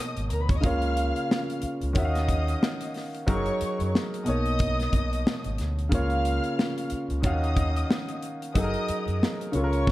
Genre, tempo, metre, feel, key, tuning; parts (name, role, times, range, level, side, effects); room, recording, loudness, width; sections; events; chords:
lush 1970s-style soul; 91 BPM; 4/4; swing 58% on 16ths; Db mixolydian; A4 = 441 Hz
muted studio string section; second line; 0.0-9.9 s; Bb4 to F6; -32 LUFS; equal
warm grand piano; accompaniment; 0.0-9.9 s; Cb3 to F5; -29 LUFS; equal
overdriven fingered electric bass; bass; 0.2-9.9 s; Gb1 to Gb2; -28 LUFS; equal
modern studio drum kit; drums; 0.2-9.9 s; hi-hat, kick drum, snare drum; -27 LUFS; equal
light reverb, small room ambience; dark, warm production; -24 LUFS; side -16 dB against mid
0.0-9.9 A section
0.0 Cbmaj9; 0.6 Db6; 2.0 Ebm9; 3.3 Gb69; 4.3 Cbmaj9; 5.9 Db6; 7.2 Ebm9; 8.6 Gb69